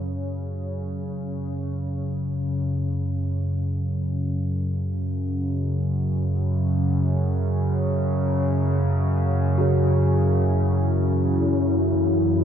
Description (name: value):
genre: dark ambient drone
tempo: free time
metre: none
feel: none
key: F# minor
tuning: A4 = 440 Hz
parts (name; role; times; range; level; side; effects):
- analog drone; drone; 0.0-12.4 s; F#2 to C#3; -22 LUFS; equal; chorus
- bronze singing bowl; texture; 0.0-12.4 s; F#4 to C#5; -32 LUFS; left 3 dB; none
- deep dark ambient pad; sustained chords; 10.7-12.4 s; E4 to A4; -25 LUFS; left 2 dB; chorus, built-in reverb
- warm grand piano; arpeggios; 9.6-12.4 s; C#3; -28 LUFS; right 4 dB; diffuse ambient delay
room: wet huge ambient reverb, RT60 7.9 s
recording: dark, warm production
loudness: -21 LUFS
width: side -8 dB against mid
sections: 0.0-12.4 A section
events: none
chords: 0.0 F#m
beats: free time